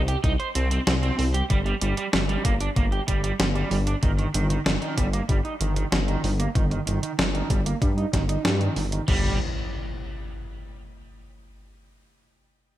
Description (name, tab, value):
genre	synthwave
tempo	95 BPM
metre	4/4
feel	straight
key	unclear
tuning	A4 = 440 Hz
part	dark detuned saw bass	bass	0.0-9.4 s	G1 to G2	-25 LUFS	equal	none
part	crunchy overdriven guitar	riff	0.1-9.4 s	Eb3 to C5	-29 LUFS	right 4 dB	lush chorus, low-pass filter, digital delay, shimmer reverb
part	clean 12-bit digital drum machine	drums	0.1-9.2 s	crash cymbal, hi-hat, snare drum	-28 LUFS	equal	gated reverb
part	electronic kick drum	drums	0.2-9.2 s	none	-24 LUFS	equal	overdrive
part	impact	sound effects	9.1-11.6 s	none	-32 LUFS	left 1 dB	none
room	light reverb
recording	bright 1980s-style digital production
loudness	-22 LUFS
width	side -14 dB against mid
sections	0.0-9.1 A section; 9.1-11.6 B section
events	filter sweep on overdriven electric guitar 0.0-9.1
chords	0.0 N.C.; 4.0 Eb/G; 9.1 N.C.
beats	0.24 0.87 | 1.50 2.13 2.77 3.40 | 4.03 4.66 5.29 5.92 | 6.55 7.19 7.82 8.45 | 9.08 9.71 10.34 10.98